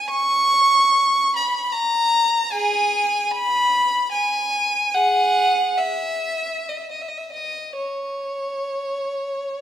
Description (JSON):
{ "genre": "classical, free, expressive piece for unaccompanied violin", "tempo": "53-76 BPM", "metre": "3/4", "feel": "rubato", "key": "unclear", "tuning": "A4 = 440 Hz", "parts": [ { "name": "rich violin", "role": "solo", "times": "0.0-9.6 s", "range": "G#4 to C#6", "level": "-18 LUFS", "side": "equal", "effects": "none" } ], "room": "moderate scoring stage reverb, RT60 1.8 s", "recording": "minimal, uncompressed stereo recording", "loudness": "-18 LUFS", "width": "side -10 dB against mid", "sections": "0.0-9.6 A section", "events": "none", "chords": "none", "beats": "| 0.09 0.92 1.72 | 2.51 3.32 4.14 | 4.96 5.78 6.69 | 7.76 8.86" }